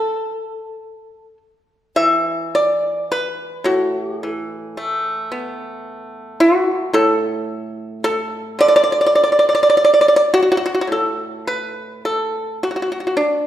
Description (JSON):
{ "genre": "chinese traditional, Chinese solo plucked strings", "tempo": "53 BPM", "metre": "2/4", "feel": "rubato", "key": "unclear", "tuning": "A4 = 442 Hz", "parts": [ { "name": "pipa", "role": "solo", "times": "0.0-13.5 s", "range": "A2 to E5", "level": "-16 LUFS", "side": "equal", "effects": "none" } ], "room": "wet recital hall reverb, RT60 1.6 s", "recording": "recorded in a church or concert hall", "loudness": "-15 LUFS", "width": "side -12 dB against mid", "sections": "0.0-10.9 A section; 10.9-13.5 B section", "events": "none", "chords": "none" }